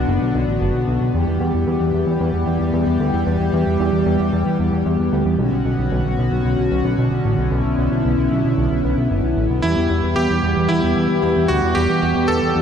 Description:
synthwave; 113 BPM; 4/4; straight; A4 = 440 Hz
chorused pulse-width pad; sustained chords; 0.0-12.6 s; D3 to G4; -19 LUFS; left 1 dB; shimmer reverb
fat analog bass; bass; 0.0-12.6 s; F#1 to E2; -20 LUFS; equal; tube saturation
bright electric grand piano; melody; 9.6-12.6 s; E4 to A4; -20 LUFS; right 1 dB; shimmer reverb, ping-pong delay
moderate cathedral reverb, RT60 4.6 s; dreamy mix soaked in reverb, lossy compression artefacts; -16 LUFS; side -8 dB against mid
0.0-12.6 A section
0.0 Bm; 1.1 Em; 5.4 Bmadd9; 9.6 Em

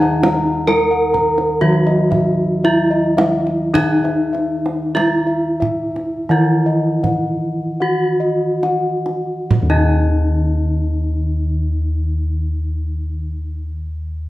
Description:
Javanese gamelan; 33-70 BPM; 4/4; straight; A4 = 440 Hz
gamelan-type bronze metallophone; melody; 0.0-13.7 s; Eb4 to Bb4-30c; -18 LUFS; equal
gamelan-type bronze metallophone; accompaniment; 0.0-13.7 s; Eb3 to Gb3-30c; -25 LUFS; right 1 dB
gamelan-type bossed gongs; arpeggios; 0.0-13.7 s; Eb5 to Bb5-30c; -23 LUFS; left 3 dB
gamelan-type bossed gongs; bass; 0.0-13.6 s; Eb2 to Fb4+20c; -20 LUFS; equal
kendang; percussion; 0.0-10.4 s; -22 LUFS; right 2 dB
moderate recital hall reverb, RT60 1.4 s; worn, warbling old tape, cassette tape, warbly pitch drift; -15 LUFS; side -16 dB against mid
0.0-9.5 A section; 9.5-14.3 B section
slowing down 0.0-9.5

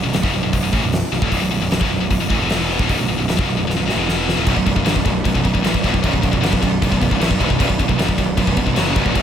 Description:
heavy metal; 153 BPM; 4/4; straight; B minor; A4 = 439 Hz
heavy high-gain guitar; riff; 0.0-9.2 s; B1 to F#3; -22 LUFS; left 10 dB; distortion
scooped high-gain guitar; riff; 0.0-9.2 s; B1 to F#3; -23 LUFS; right 9 dB; distortion
fuzz picked electric bass; bass; 0.0-9.2 s; B0 to A1; -23 LUFS; equal; overdrive
big rock drum kit; drums; 0.1-9.2 s; crash cymbal, hi-hat, kick drum, snare drum; -20 LUFS; equal
dark symphonic string section; sustained chords; 4.5-9.2 s; F#3 to D5; -30 LUFS; left 1 dB
fuzz guitar; riff; 4.5-9.2 s; B1 to F#3; -23 LUFS; equal; distortion
small room ambience; -15 LUFS; side -9 dB against mid
0.0-4.5 A section; 4.5-9.2 B section
drum fill 3.7-4.5
0.0 B5; 2.4 E5; 2.8 Bm; 4.0 E5; 4.4 D5; 4.5 Bm

